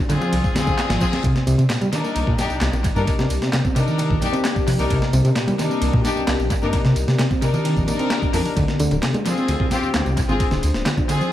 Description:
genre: breakbeat, breaks.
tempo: 131 BPM.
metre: 4/4.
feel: straight.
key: C minor.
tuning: A4 = 440 Hz.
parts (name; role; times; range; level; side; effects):
deep dark ambient pad; sustained chords; 0.0-11.3 s; C4 to D5; -29 LUFS; left 2 dB; chorus, built-in reverb, sidechain pumping.
reed electric piano; riff; 0.0-11.3 s; Bb2 to D4; -22 LUFS; equal; fast tremolo, tube saturation, vintage 12-bit sampler grit, analog delay.
rich chamber string section; stabs; 0.1-11.3 s; C4 to Bb4; -25 LUFS; left 3 dB; analog delay.
breakbeat sampler-style drum kit; drums; 0.1-11.2 s; hi-hat, kick drum, ride cymbal, snare drum; -23 LUFS; equal; analog delay.
electronic tambourine and handclaps; drums; 0.1-11.3 s; none; -32 LUFS; right 1 dB; analog delay.
congas; percussion; 0.1-11.1 s; none; -34 LUFS; left 1 dB; none.
detuned saw bass; bass; 0.3-10.8 s; D1 to C3; -22 LUFS; equal; none.
reverse cymbal; sound effects; 0.5-1.2 s; none; -36 LUFS; left 4 dB; none.
room: light reverb, digital ambience.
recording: echo-heavy mix, vinyl crackle.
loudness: -17 LUFS.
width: side -12 dB against mid.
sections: 0.0-11.3 A section.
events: reverse cymbal 0.5-1.2.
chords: 0.0 Dm7b5; 1.2 Cm7; 8.6 Dm7b5.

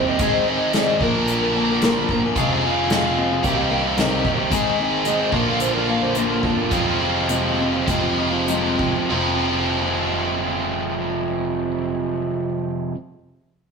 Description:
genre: folk rock and heartland rock.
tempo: 94-111 BPM.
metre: 4/4.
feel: straight.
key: F dorian.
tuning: A4 = 440 Hz.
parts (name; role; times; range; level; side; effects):
overdriven slide guitar; second line; 0.0-7.0 s; F4 to C6; -26 LUFS; right 5 dB; none.
picked steel-string acoustic guitar; accompaniment; 0.0-13.0 s; F2 to Bb4; -25 LUFS; left 4 dB; none.
biting overdriven guitar; riff; 0.0-13.0 s; F2 to Bb4; -20 LUFS; right 1 dB; none.
picked electric bass; bass; 0.0-12.9 s; F1 to Eb2; -31 LUFS; equal; none.
unplugged drum kit; drums; 0.2-8.9 s; hi-hat, kick drum, snare drum; -26 LUFS; right 1 dB; none.
room: moderate stone room reverb, RT60 1.1 s.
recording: rough rehearsal-room recording.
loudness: -18 LUFS.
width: side -5 dB against mid.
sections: 0.0-9.1 A section; 9.1-13.7 B section.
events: slowing down 4.5-9.1.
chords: 0.2 Ab; 1.0 Bb; 2.4 Fm; 3.4 Cm; 4.5 Ab; 5.3 Bb; 6.7 Fm.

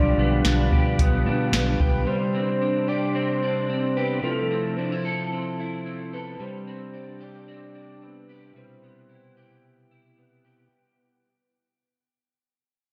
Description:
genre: dream pop.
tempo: 111 BPM.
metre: 4/4.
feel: straight.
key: C major.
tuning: A4 = 441 Hz.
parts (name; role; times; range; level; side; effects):
soft octave-layered synth lead; melody; 0.0-10.1 s; A4 to D5; -32 LUFS; equal; chorus, phaser, diffuse ambient delay.
mellow tonewheel organ; sustained chords; 0.0-10.7 s; B2 to C5; -31 LUFS; equal; slow rotary speaker.
electric guitar at the edge of break-up; arpeggios; 0.0-11.3 s; F3 to A4; -32 LUFS; equal; ensemble chorus, diffuse ambient delay.
vintage muted fingered electric bass; bass; 0.0-2.0 s; B1 to B2; -26 LUFS; equal; none.
soft vintage rhythm box; drums; 0.4-1.9 s; hi-hat, kick drum, snare drum; -25 LUFS; equal; none.
room: wet plate reverb, RT60 2.3 s.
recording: dreamy mix soaked in reverb.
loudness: -24 LUFS.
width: mono.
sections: 0.0-10.7 A section.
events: fade-out 0.0-10.7.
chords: 0.0 G7/B; 2.1 Csus2; 4.2 Fmaj7; 6.4 Csus2; 8.6 Cmaj7.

